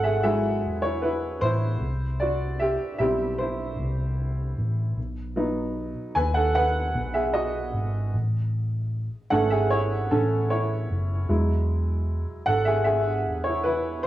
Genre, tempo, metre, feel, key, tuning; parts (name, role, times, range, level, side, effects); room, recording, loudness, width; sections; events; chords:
pop; 76 BPM; 4/4; straight; E major; A4 = 438 Hz
clear upright piano; accompaniment; 0.0-14.1 s; E3 to G#5; -24 LUFS; equal
vintage muted fingered electric bass; bass; 0.0-14.0 s; E1 to D#2; -27 LUFS; equal
light reverb, small room ambience; worn, warbling old tape, cassette tape, warbly pitch drift, small room reverb; -23 LUFS; side -14 dB against mid
0.0-14.1 A section
upright piano solo 0.0-14.1
0.0 Eadd9; 1.8 C; 5.0 B; 8.1 A; 11.3 Eadd9